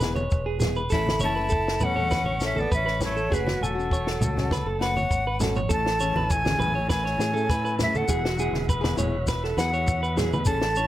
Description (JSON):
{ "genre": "highlife guitar band", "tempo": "101 BPM", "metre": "4/4", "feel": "straight", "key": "A major", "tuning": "A4 = 439 Hz", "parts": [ { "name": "breathy bright jazz flute", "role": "melody", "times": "0.0-10.9 s", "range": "A4 to B5", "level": "-28 LUFS", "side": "equal", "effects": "tape echo" }, { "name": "raspy tenor saxophone", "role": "second line", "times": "0.0-4.8 s", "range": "F#3 to E4", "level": "-34 LUFS", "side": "left 3 dB", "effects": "none" }, { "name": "nylon-string guitar", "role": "accompaniment", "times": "0.0-10.9 s", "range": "E3 to A4", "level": "-32 LUFS", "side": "left 6 dB", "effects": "none" }, { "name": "clean electric guitar", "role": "arpeggios", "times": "0.0-10.9 s", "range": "F#4 to G#5", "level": "-29 LUFS", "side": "right 2 dB", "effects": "plate reverb, tape echo" }, { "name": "fingered electric bass", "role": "bass", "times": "0.0-10.9 s", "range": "E1 to A2", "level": "-29 LUFS", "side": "equal", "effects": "none" }, { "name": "compact cocktail drum kit", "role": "drums", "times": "0.0-10.7 s", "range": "kick drum, snare drum, toms", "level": "-28 LUFS", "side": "equal", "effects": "none" }, { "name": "shekere", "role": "percussion", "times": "0.0-10.9 s", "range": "none", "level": "-31 LUFS", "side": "left 1 dB", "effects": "none" }, { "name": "congas", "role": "percussion", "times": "0.2-10.5 s", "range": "none", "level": "-32 LUFS", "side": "right 1 dB", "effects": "none" }, { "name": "tonewheel organ", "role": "sustained chords", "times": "5.7-10.9 s", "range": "C#4 to B4", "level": "-38 LUFS", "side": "equal", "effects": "slow rotary speaker" } ], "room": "light reverb", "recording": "none", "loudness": "-22 LUFS", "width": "side -13 dB against mid", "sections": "0.0-5.7 A section; 5.7-10.9 B section", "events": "drum fill 5.4", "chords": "0.0 E; 0.9 A; 3.3 F#m; 5.7 Amaj7; 8.1 Eadd9" }